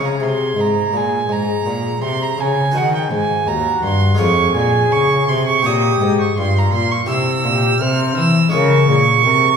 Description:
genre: classical, baroque-style sonata movement with continuo.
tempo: 83 BPM.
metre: 4/4.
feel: straight.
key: unclear.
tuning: A4 = 440 Hz.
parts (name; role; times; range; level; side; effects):
baroque flute; melody; 0.0-9.6 s; E4 to C5; -21 LUFS; left 4 dB; none.
rich violin; second line; 0.0-9.6 s; Gb5 to F6; -18 LUFS; right 6 dB; none.
harpsichord; accompaniment; 0.0-9.6 s; Eb2 to Db5; -22 LUFS; left 2 dB; none.
rich cello; bass; 0.0-9.6 s; Eb2 to E3; -18 LUFS; equal; none.
room: wet scoring stage reverb, RT60 1.7 s.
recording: heard from further back in the room.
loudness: -14 LUFS.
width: side -6 dB against mid.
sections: 0.0-9.6 A section.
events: none.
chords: 0.0 Db; 2.8 Cdim; 4.2 Db/F; 5.6 Gdim; 7.1 C; 8.5 Db.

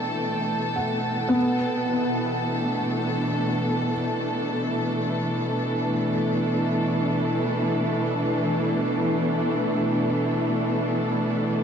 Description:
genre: ambient.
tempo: free time.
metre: none.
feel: none.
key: unclear.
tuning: A4 = 440 Hz.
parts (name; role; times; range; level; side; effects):
dark chamber string section; sustained chords; 0.0-11.6 s; B2 to A4; -23 LUFS; equal; none.
felt-muted upright piano; arpeggios; 0.0-3.9 s; B3 to F#5; -28 LUFS; equal; ping-pong delay.
drifting glass-harmonics texture; texture; 0.0-3.9 s; G5; -44 LUFS; right 1 dB; none.
hand-pumped harmonium; drone; 3.9-11.6 s; B3 to B4; -43 LUFS; right 2 dB; none.
room: wet shimmer reverb, RT60 7.8 s.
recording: dark, warm production.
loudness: -22 LUFS.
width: side -7 dB against mid.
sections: 0.0-3.9 A section; 3.9-11.6 B section.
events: none.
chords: 0.0 Gmaj13/B; 3.9 Asus24/B.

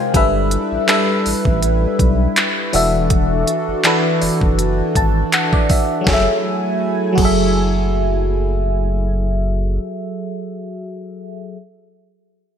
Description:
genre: contemporary R&B.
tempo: 81 BPM.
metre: 4/4.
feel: swing 54% on 16ths.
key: F# minor.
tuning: A4 = 440 Hz.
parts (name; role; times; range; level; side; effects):
FM electric piano; accompaniment; 0.0-11.6 s; E3 to A5; -18 LUFS; left 1 dB; chorus, phaser.
chorused pulse-width pad; sustained chords; 0.0-9.1 s; B#2 to G#5; -24 LUFS; equal; none.
saturated sub bass; bass; 0.1-9.8 s; E1 to B1; -19 LUFS; equal; none.
smooth R&B drum kit; drums; 0.1-7.4 s; crash cymbal, handclaps, hi-hat, kick drum, snare drum; -17 LUFS; equal; gated reverb.
worn celesta; texture; 1.6-9.1 s; B4 to D5; -32 LUFS; right 3 dB; none.
room: light reverb.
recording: bright 1980s-style digital production.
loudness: -14 LUFS.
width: side -8 dB against mid.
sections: 0.0-6.1 A section; 6.1-9.0 B section.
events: FM electric piano fill 4.6-6.1.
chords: 0.1 G6; 2.7 E9sus4; 6.1 F#m9.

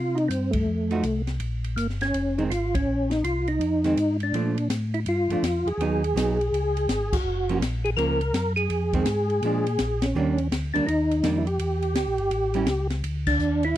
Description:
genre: soul jazz organ trio.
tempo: 165 BPM.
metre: 4/4.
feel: swing 64% on 8ths.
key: unclear.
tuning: A4 = 437 Hz.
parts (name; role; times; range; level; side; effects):
percussive tonewheel organ; melody; 0.0-13.8 s; A3 to Bb4; -25 LUFS; equal; slow rotary speaker, chorus vibrato.
mellow tonewheel organ; bass; 0.0-13.7 s; F1 to C3; -27 LUFS; equal; chorus vibrato, slow rotary speaker.
open jazz drum kit; drums; 0.2-13.7 s; crash cymbal, hi-hat, kick drum, ride cymbal, snare drum; -32 LUFS; left 1 dB; none.
archtop guitar, miked and amplified; accompaniment; 0.9-12.7 s; Eb3 to Gb4; -27 LUFS; right 5 dB; none.
room: studio reverb.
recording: dry, close 1970s-style studio recording.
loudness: -22 LUFS.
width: side -13 dB against mid.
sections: 0.0-4.3 A section; 4.3-13.8 B section.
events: band accent 0.5, 2.7, 7.1, 10.0, 13.2.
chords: 0.0 C5; 0.7 F7b9; 1.4 Bb9sus4; 4.3 Bbmaj7; 5.8 Abm7; 6.5 Db5; 7.2 Gbmaj7; 8.7 Fm7; 9.4 Bb7; 10.2 Ebmaj7; 11.6 Em7b5; 12.3 A7; 13.0 N.C..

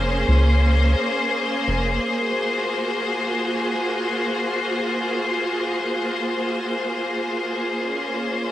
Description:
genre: ambient dub.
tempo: free time.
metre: none.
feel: none.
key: unclear.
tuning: A4 = 440 Hz.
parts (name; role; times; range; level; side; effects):
bright studio string section; sustained chords; 0.0-8.5 s; Bb3 to C5; -21 LUFS; left 1 dB; none.
round analog bass; bass; 0.0-2.0 s; F1 to Db2; -18 LUFS; equal; none.
room: moderate spring reverb, RT60 2.7 s.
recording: home recording on cassette.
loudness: -20 LUFS.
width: side -13 dB against mid.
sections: 0.0-2.0 A section; 2.0-8.5 B section.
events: none.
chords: 0.0 Bbm9; 2.0 Ab13; 7.6 Bbm9.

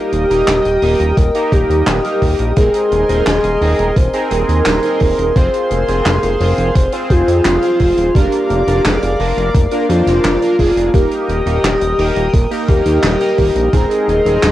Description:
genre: synthwave.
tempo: 86 BPM.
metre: 4/4.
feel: straight.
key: Eb major.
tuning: A4 = 440 Hz.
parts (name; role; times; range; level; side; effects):
soft octave-layered synth lead; melody; 0.0-14.5 s; F4 to C5; -16 LUFS; left 1 dB; chorus, tremolo, cassette tape, tape echo.
chorused pulse-width pad; sustained chords; 0.0-14.5 s; Ab4 to Eb6; -22 LUFS; equal; sidechain pumping, cassette tape.
analog synth brass; stabs; 0.0-14.4 s; Bb3 to C5; -20 LUFS; right 2 dB; chorus, phaser, cassette tape.
fat analog bass; bass; 0.1-14.5 s; Eb1 to F2; -18 LUFS; equal; none.
soft-mallet drum kit; drums; 0.1-14.5 s; handclaps, hi-hat, snare drum; -21 LUFS; equal; cassette tape.
electronic kick drum; drums; 1.2-13.9 s; none; -14 LUFS; equal; cassette tape.
room: moderate booth ambience, RT60 0.2 s.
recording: home recording on cassette.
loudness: -11 LUFS.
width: side -14 dB against mid.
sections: 0.0-14.5 A section.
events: none.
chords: 0.0 Eb; 2.6 Abadd9/Eb; 5.4 Fm; 8.1 Bb/F; 10.9 Eb; 13.7 Abadd9/Eb.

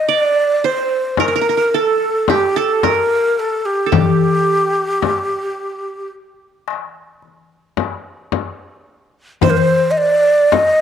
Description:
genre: Arabic maqam ensemble.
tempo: 109 BPM (eighths).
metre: 10/8.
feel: straight.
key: unclear.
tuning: A4 = 440 Hz.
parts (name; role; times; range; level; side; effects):
breathy ney; melody; 0.0-10.8 s; G4 to Eb5; -15 LUFS; equal; none.
qanun; second line; 0.0-10.8 s; G4 to Eb5; -19 LUFS; right 10 dB; none.
darbuka; percussion; 1.2-10.8 s; none; -20 LUFS; left 7 dB; none.
frame drum; percussion; 1.2-10.8 s; none; -19 LUFS; left 7 dB; none.
room: moderate spring reverb, RT60 1.8 s, studio reverb.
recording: 1960s-style stereo with parts hard left and right.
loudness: -14 LUFS.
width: side -8 dB against mid.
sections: 0.0-10.8 A section.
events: none.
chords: none.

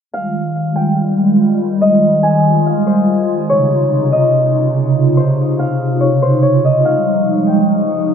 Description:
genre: hip hop.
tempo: 143 BPM.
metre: 4/4.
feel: half-time.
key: F minor.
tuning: A4 = 440 Hz.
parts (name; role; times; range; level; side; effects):
Celtic harp; melody; 0.1-8.1 s; C5 to Ab5; -16 LUFS; left 1 dB; digital delay.
hollow soft pad; sustained chords; 0.1-8.1 s; C3 to F4; -13 LUFS; equal; ensemble chorus.
room: light reverb, small room ambience.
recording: dark, warm production, low-pass filter, nothing above 7.8 kHz.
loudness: -11 LUFS.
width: side -7 dB against mid.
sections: 0.1-8.1 A section.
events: none.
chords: 0.1 Fm9; 3.5 Dbmaj9; 6.8 Fm9.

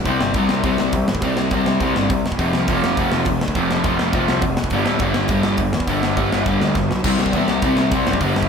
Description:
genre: punk rock.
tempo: 206 BPM.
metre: 4/4.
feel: straight.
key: unclear.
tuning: A4 = 440 Hz.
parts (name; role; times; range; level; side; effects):
overdriven semi-hollow guitar; riff; 0.0-8.5 s; F2 to C4; -18 LUFS; left 1 dB; none.
fuzz picked electric bass; bass; 0.0-8.5 s; D1 to E2; -24 LUFS; right 1 dB; overdrive.
tight metal drum kit; drums; 0.1-8.5 s; crash cymbal, hi-hat, kick drum, snare drum; -22 LUFS; equal; none.
room: moderate large studio reverb, RT60 1.3 s.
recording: band playing live in one room.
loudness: -16 LUFS.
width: side -6 dB against mid.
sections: 0.0-7.1 A section; 7.1-8.5 B section.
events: drum fill 6.8.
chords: 0.1 C5; 2.2 F5; 4.7 G5; 7.1 C5.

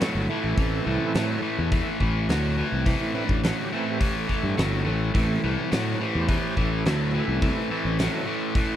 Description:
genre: blues rock power trio and southern rock.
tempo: 105 BPM.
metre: 4/4.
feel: straight.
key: A minor.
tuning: A4 = 439 Hz.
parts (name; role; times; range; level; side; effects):
overdriven tonewheel organ; sustained chords; 0.0-8.8 s; E3 to C5; -33 LUFS; right 6 dB; chorus vibrato, slow rotary speaker.
crunchy overdriven guitar; riff; 0.0-8.8 s; A2 to F#3; -26 LUFS; left 1 dB; spring reverb.
huge arena drum kit; drums; 0.0-8.7 s; hi-hat, kick drum, snare drum; -27 LUFS; equal; none.
fuzz fingered electric bass; bass; 0.1-8.1 s; G1 to A2; -27 LUFS; equal; overdrive.
room: studio ambience.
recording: dry, close 1970s-style studio recording.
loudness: -22 LUFS.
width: side -11 dB against mid.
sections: 0.0-8.8 A section.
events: none.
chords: 0.0 Am.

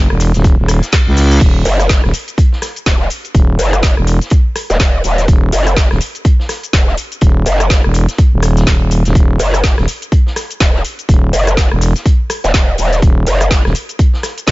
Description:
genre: bass house.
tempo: 124 BPM.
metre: 4/4.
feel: swing 59% on 16ths.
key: Eb phrygian.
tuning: A4 = 440 Hz.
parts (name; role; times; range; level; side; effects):
growling FM bass; bass; 0.0-13.7 s; Eb1 to Db2; -12 LUFS; equal; overdrive, sidechain pumping.
garage drum kit; drums; 0.1-14.5 s; crash cymbal, hi-hat, rim click, shaker, snare drum; -19 LUFS; left 1 dB; none.
vintage drum kit; drums; 0.2-14.5 s; hi-hat, snare drum; -30 LUFS; equal; none.
electronic kick drum; drums; 0.4-14.5 s; none; -11 LUFS; equal; none.
reverse cymbal; sound effects; 0.7-1.4 s; none; -24 LUFS; left 1 dB; none.
growl bass; bass; 1.7-14.5 s; Eb1 to Gb1; -13 LUFS; equal; chorus, overdrive, sidechain pumping.
room: little or no reverb.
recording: nothing above 7.6 kHz.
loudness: -10 LUFS.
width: side -20 dB against mid.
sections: 0.0-14.5 A section.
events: reverse cymbal 0.7-1.4.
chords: 0.0 Ebm.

